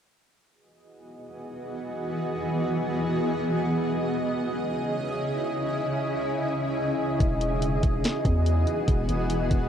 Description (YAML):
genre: hip hop, atmospheric cloud-rap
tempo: free time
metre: none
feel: none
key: unclear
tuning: A4 = 440 Hz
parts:
  - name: granular cloud pad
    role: sustained chords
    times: 1.2-9.7 s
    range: C#3 to D#5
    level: -26 LUFS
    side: equal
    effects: built-in reverb, sidechain pumping, cassette tape
  - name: long sustained 808-style bass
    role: bass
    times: 7.2-9.7 s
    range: E1 to E2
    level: -26 LUFS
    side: equal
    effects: none
  - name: trap drum kit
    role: drums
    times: 7.2-9.6 s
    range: hi-hat, kick drum, snare drum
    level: -26 LUFS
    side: equal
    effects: cassette tape
room: moderate small room reverb, RT60 0.5 s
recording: home recording on cassette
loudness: -24 LUFS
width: side -9 dB against mid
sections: 0.5-9.7 A section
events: none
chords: 0.5 Emaj7; 3.8 C#madd9; 7.2 Emaj7